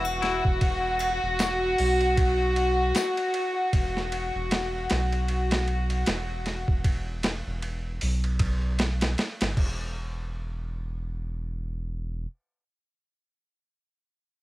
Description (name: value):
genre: trip hop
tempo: 77 BPM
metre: 4/4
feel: swing 58% on 16ths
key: unclear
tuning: A4 = 440 Hz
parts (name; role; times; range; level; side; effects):
- warm upright piano; accompaniment; 0.0-0.6 s; E3 to E4; -46 LUFS; left 1 dB; none
- warm studio violin section; sustained chords; 0.0-6.9 s; F#4; -26 LUFS; equal; cassette tape
- soft dub sub bass; bass; 0.0-12.3 s; E1 to B1; -29 LUFS; equal; none
- triangle and tambourine; percussion; 0.0-3.1 s; none; -39 LUFS; left 10 dB; none
- boom bap sampler-style drum kit; drums; 0.2-9.8 s; crash cymbal, hi-hat, kick drum, ride cymbal, snare drum; -29 LUFS; equal; small room ambience, cassette tape
room: small room ambience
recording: home recording on cassette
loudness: -24 LUFS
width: side -17 dB against mid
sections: 0.0-10.0 A section; 10.0-13.1 B section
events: none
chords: 0.0 Esus2; 9.6 N.C.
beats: | 0.61 1.39 2.17 2.95 | 3.73 4.51 5.29 6.07 | 6.84 7.62 8.40 9.18 | 9.96 10.74 11.52